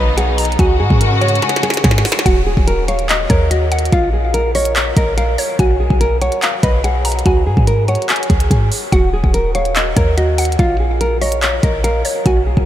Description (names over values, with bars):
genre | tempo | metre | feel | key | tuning
hip hop, trap | 144 BPM | 4/4 | half-time | Eb minor | A4 = 440 Hz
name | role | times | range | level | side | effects
nylon-string guitar | melody | 0.0-12.6 s | F4 to Db5 | -18 LUFS | right 1 dB | low-pass filter, ping-pong delay
mallet-like synth pluck | second line | 0.0-12.7 s | Db5 to Bb5 | -23 LUFS | left 4 dB | chorus, ping-pong delay
rich studio string section | sustained chords | 0.0-2.2 s | Db3 to Gb4 | -22 LUFS | left 2 dB | none
clean 808-style bass | bass | 0.0-12.7 s | Eb1 to Ab2 | -17 LUFS | equal | none
glitchy drum kit | drums | 0.2-12.7 s | handclaps, hi-hat, kick drum, snare drum | -17 LUFS | equal | none
room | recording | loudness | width
moderate huge ambient reverb, RT60 6.3 s | dreamy mix soaked in reverb | -12 LUFS | side -12 dB against mid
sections
0.0-2.3 A section; 2.3-12.7 B section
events
drum fill 1.4-2.3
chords
0.0 B; 0.6 Dbsus4; 2.3 Ebm; 3.9 Bb5; 5.6 Bmaj7(no3); 7.3 Db5; 8.9 Ebm; 10.6 Bb5